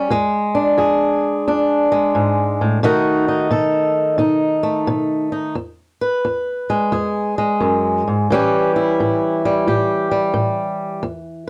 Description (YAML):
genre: blues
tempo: 88 BPM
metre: 4/4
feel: swing 66% on 8ths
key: unclear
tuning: A4 = 440 Hz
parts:
  - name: fingerpicked swing-style acoustic guitar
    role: solo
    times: 0.0-11.5 s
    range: E2 to B4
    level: -18 LUFS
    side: equal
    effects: none
room: light reverb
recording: dark, warm production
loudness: -18 LUFS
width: mono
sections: 0.0-5.6 A section; 5.6-11.5 A section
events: none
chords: 0.1 E7; 2.8 B7; 5.6 E; 8.3 A7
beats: | 0.12 0.80 1.48 2.16 | 2.84 3.52 4.21 4.89 | 5.57 6.25 6.93 7.62 | 8.30 8.98 9.67 10.35 | 11.03